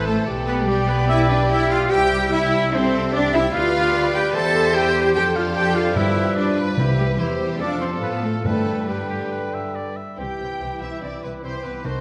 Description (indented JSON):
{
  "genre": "quick classical-period movement for symphony orchestra",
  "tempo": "147 BPM",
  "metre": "4/4",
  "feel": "rubato",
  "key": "C major",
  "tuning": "A4 = 440 Hz",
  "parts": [
    { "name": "warm studio violin section", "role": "melody", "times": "0.0-12.0 s", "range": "E4 to G5", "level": "-34 LUFS", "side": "equal", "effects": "none" },
    { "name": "bright concert flute", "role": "second line", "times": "0.0-12.0 s", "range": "E5 to A6", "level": "-31 LUFS", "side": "equal", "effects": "none" },
    { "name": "bright oboe", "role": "second line", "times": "0.0-12.0 s", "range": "Gb4 to E5", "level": "-34 LUFS", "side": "equal", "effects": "none" },
    { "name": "clear clarinet", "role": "second line", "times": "0.0-12.0 s", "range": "E4 to A5", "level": "-32 LUFS", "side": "equal", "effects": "none" },
    { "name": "warm studio violin section", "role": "second line", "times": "0.0-11.9 s", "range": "A3 to A5", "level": "-34 LUFS", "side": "equal", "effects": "none" },
    { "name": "mellow bassoon", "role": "accompaniment", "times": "0.0-12.0 s", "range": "D3 to G3", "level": "-32 LUFS", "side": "equal", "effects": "none" },
    { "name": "warm studio viola section", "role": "accompaniment", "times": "0.0-12.0 s", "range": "E3 to A4", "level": "-29 LUFS", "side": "equal", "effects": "none" },
    { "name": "mellow French horn section", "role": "sustained chords", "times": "0.0-12.0 s", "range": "B3 to D5", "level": "-33 LUFS", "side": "equal", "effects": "none" },
    { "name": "dark trumpet section", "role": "stabs", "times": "0.0-12.0 s", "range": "B4 to G5", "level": "-32 LUFS", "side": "equal", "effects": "none" },
    { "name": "warm chamber double bass section", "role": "bass", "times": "0.0-11.9 s", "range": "A1 to A2", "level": "-28 LUFS", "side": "equal", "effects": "none" },
    { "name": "warm studio cello section", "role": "bass", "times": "0.1-11.9 s", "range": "C3 to A4", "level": "-27 LUFS", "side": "equal", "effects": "none" },
    { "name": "timpani", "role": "percussion", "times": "6.0-9.1, 11.8-12.0 s", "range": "G2 to C3", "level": "-28 LUFS", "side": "equal", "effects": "none" }
  ],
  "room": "wet scoring stage reverb, RT60 1.9 s",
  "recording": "none",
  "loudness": "-20 LUFS",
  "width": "mono",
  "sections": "0.0-10.2 A section; 10.2-12.0 B section",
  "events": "none",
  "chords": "0.3 G/B; 1.9 C; 3.5 G7/D; 4.3 C/E; 5.2 Dm7/F; 6.0 G7; 6.8 C; 7.6 F; 8.5 G; 10.2 C",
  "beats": "| 0.27 0.68 1.09 1.50 | 1.91 2.32 2.73 3.13 | 3.54 3.94 4.34 4.75 | 5.15 5.56 5.96 6.37 | 6.78 7.19 7.60 8.02 | 8.45 8.89 9.33 9.76 | 10.19 10.61 11.03 11.44 | 11.85"
}